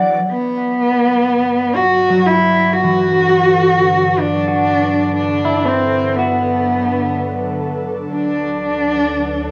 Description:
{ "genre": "ambient", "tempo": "61 BPM", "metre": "4/4", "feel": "straight", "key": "unclear", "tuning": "A4 = 438 Hz", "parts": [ { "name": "ethereal airy pad", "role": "sustained chords", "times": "0.0-9.5 s", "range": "D3 to D5", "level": "-27 LUFS", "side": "equal", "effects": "ensemble chorus, built-in reverb, phaser, cassette tape" }, { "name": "semi-hollow electric guitar", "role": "arpeggios", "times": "0.0-9.5 s", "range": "E3 to F#5", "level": "-22 LUFS", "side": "equal", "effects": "spring reverb, cassette tape, analog delay" }, { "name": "dark cello", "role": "melody", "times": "0.3-9.5 s", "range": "B3 to F#4", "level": "-17 LUFS", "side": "equal", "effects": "cassette tape, analog delay" }, { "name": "warm sub bass", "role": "bass", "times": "0.3-9.5 s", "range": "D2 to G2", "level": "-31 LUFS", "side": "equal", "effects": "none" } ], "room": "wet small room ambience, RT60 0.5 s", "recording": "home recording on cassette", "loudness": "-16 LUFS", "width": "mono", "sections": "0.3-9.5 A section", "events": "fade-in on ambient pad 0.3-9.5; fade-in on sub bass 0.3-9.5", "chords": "0.3 Gmaj7; 8.1 D" }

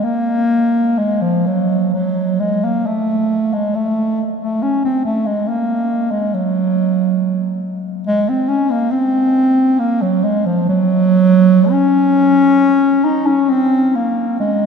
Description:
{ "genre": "classical, free, expressive piece for unaccompanied bass clarinet", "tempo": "55-71 BPM", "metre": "3/4", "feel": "rubato", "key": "unclear", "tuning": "A4 = 440 Hz", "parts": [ { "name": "dark bass clarinet", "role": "solo", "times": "0.0-14.7 s", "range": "F3 to Eb4", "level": "-13 LUFS", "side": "equal", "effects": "none" } ], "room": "wet cathedral reverb, RT60 5.9 s", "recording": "heard from further back in the room", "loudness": "-13 LUFS", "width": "side -6 dB against mid", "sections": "0.0-14.7 A section", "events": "none", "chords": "none" }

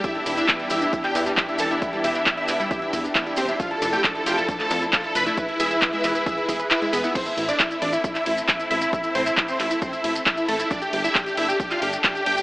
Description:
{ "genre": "uplifting trance", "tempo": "135 BPM", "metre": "4/4", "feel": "straight", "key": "A minor", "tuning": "A4 = 440 Hz", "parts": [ { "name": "supersaw chords", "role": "melody", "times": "0.0-12.4 s", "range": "A3 to B5", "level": "-25 LUFS", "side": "equal", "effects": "phaser, sidechain pumping, digital delay" }, { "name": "supersaw stab", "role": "second line", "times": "0.0-12.4 s", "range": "E5 to B6", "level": "-29 LUFS", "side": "equal", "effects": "cassette tape, sidechain pumping, digital delay" }, { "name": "dark studio string section", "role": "sustained chords", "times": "0.0-12.4 s", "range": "E3 to B4", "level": "-29 LUFS", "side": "left 1 dB", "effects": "sidechain pumping" }, { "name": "analog pluck", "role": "arpeggios", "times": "0.0-7.1 s", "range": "G3 to B4", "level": "-29 LUFS", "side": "right 1 dB", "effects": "chorus, sidechain pumping, digital delay" }, { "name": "big-room dance drum kit", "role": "drums", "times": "0.0-12.4 s", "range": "crash cymbal, handclaps, hi-hat, ride cymbal", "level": "-25 LUFS", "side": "equal", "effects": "none" }, { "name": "electronic kick drum", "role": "drums", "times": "0.0-12.1 s", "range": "none", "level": "-30 LUFS", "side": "equal", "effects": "none" }, { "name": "maracas", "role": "percussion", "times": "0.0-12.4 s", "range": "none", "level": "-36 LUFS", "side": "equal", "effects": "none" }, { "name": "plucky analog bass", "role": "bass", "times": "0.3-12.4 s", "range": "E1 to F2", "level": "-33 LUFS", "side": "equal", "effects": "sidechain pumping" } ], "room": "moderate lush hall reverb, RT60 1.6 s, digital ambience", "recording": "AM radio sound", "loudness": "-20 LUFS", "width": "side -20 dB against mid", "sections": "0.0-7.2 A section; 7.2-12.4 A section", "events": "drop 0.0-7.2, 7.2-12.4; kick drops out 6.7-7.2", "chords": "0.0 Em7; 3.6 Dmadd9/F; 5.4 E; 7.2 Am; 10.7 Gsus2" }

